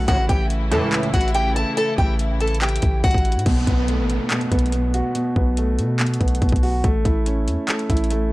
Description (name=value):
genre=hip hop, trap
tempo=142 BPM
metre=4/4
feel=half-time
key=unclear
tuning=A4 = 440 Hz
part: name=picked old ladder-braced acoustic guitar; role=melody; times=0.0-3.4 s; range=F#4 to A5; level=-23 LUFS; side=left 1 dB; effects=tape echo
part: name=dark studio string section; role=sustained chords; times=0.0-3.4 s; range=C#3 to E4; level=-28 LUFS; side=left 1 dB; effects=none
part: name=long sustained 808-style bass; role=bass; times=0.0-8.3 s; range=A1 to B2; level=-22 LUFS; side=equal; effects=none
part: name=sync-sweep polysynth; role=stabs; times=0.1-1.1 s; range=A1 to E3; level=-22 LUFS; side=right 1 dB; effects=chorus
part: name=trap drum kit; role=drums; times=0.1-8.2 s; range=crash cymbal, handclaps, hi-hat, kick drum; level=-21 LUFS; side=equal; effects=vintage 12-bit sampler grit
part: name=dark grand piano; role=accompaniment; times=3.5-8.3 s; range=B2 to F#4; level=-22 LUFS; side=right 1 dB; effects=none
part: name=downlifter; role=sound effects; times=3.5-6.8 s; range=none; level=-31 LUFS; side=equal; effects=none
room=little or no reverb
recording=dry, gritty hardware recording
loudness=-18 LUFS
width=side -19 dB against mid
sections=0.0-3.5 A section; 3.5-8.3 B section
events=none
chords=0.1 A6; 3.5 B5; 6.8 A